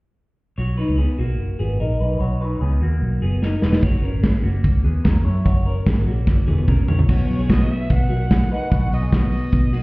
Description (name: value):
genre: jangly indie pop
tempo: 148 BPM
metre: 4/4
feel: straight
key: B major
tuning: A4 = 440 Hz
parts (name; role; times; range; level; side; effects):
- electric guitar through a small old amp; arpeggios; 0.6-9.8 s; A#3 to C#5; -27 LUFS; left 1 dB; phaser, digital delay
- vintage muted fingered electric bass; bass; 0.6-9.8 s; E1 to B2; -20 LUFS; equal; none
- modern studio drum kit; drums; 3.4-9.8 s; crash cymbal, hi-hat, kick drum, snare drum, toms; -18 LUFS; equal; none
- dark violin; melody; 7.1-9.8 s; C#5 to F#5; -31 LUFS; right 2 dB; plate reverb, digital delay
room: light reverb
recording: heard muffled through a wall, stone room reverb, EQ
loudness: -17 LUFS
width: side -23 dB against mid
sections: 0.6-7.1 A section; 7.1-9.8 B section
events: drum fill 3.4-3.8, 6.3-7.1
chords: 0.6 B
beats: | 0.58 0.98 1.39 1.80 | 2.20 2.61 3.02 3.42 | 3.83 4.24 4.64 5.05 | 5.46 5.87 6.27 6.68 | 7.09 7.49 7.90 8.31 | 8.71 9.12 9.53